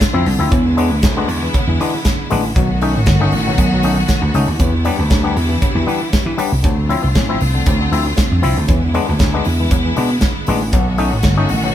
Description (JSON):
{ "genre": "disco", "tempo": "118 BPM", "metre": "4/4", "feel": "straight", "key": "unclear", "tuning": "A4 = 439 Hz", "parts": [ { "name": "clear studio string section", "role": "sustained chords", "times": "0.0-11.7 s", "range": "D3 to F#4", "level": "-22 LUFS", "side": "right 1 dB", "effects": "none" }, { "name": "modern studio drum kit", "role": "drums", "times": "0.0-11.6 s", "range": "hi-hat, kick drum, snare drum", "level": "-18 LUFS", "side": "equal", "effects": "none" }, { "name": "cowbell", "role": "percussion", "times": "0.0-11.4 s", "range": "none", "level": "-31 LUFS", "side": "left 2 dB", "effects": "none" }, { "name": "auto-wah clav", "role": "accompaniment", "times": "0.1-11.7 s", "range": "B2 to E4", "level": "-21 LUFS", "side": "left 4 dB", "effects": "none" }, { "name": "vintage slap bass", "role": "bass", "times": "0.1-11.7 s", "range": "G1 to E3", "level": "-16 LUFS", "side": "equal", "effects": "none" } ], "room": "light reverb", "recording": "band playing live in one room", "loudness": "-13 LUFS", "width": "side -11 dB against mid", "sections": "0.0-11.7 A section", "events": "none", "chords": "0.0 Dm7; 0.5 E7; 2.6 B7; 4.6 Em7; 6.6 Dm7; 8.7 E7; 10.7 B7", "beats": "0.01 | 0.52 1.03 1.54 2.05 | 2.56 3.07 3.58 4.09 | 4.60 5.11 5.62 6.13 | 6.65 7.16 7.67 8.18 | 8.69 9.20 9.71 10.22 | 10.73 11.24" }